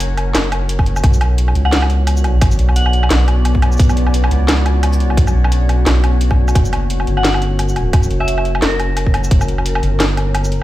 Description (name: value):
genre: half-time drum and bass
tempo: 174 BPM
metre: 4/4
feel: swing 57% on 16ths, half-time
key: B harmonic minor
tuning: A4 = 436 Hz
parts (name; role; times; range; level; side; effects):
- deep dark ambient pad; sustained chords; 0.0-10.6 s; B3 to D5; -23 LUFS; left 1 dB; chorus, built-in reverb, sidechain pumping
- saturated sub bass; bass; 0.0-10.6 s; F#1 to C#2; -14 LUFS; equal; tube saturation
- drum and bass drum kit; drums; 0.0-10.6 s; hi-hat, shaker, snare drum, woodblock; -20 LUFS; equal; none
- electronic kick drum; drums; 0.8-9.4 s; none; -12 LUFS; equal; none
- soft synth bell; melody; 1.7-3.1, 7.2-9.1 s; A#4 to F#5; -24 LUFS; left 1 dB; chorus, phaser, dub echo
room: light reverb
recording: played on a big sound system in a bare room, large studio reverb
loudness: -12 LUFS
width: side -15 dB against mid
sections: 0.0-10.6 A section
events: none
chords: 0.0 F#; 1.0 Bm; 6.6 F#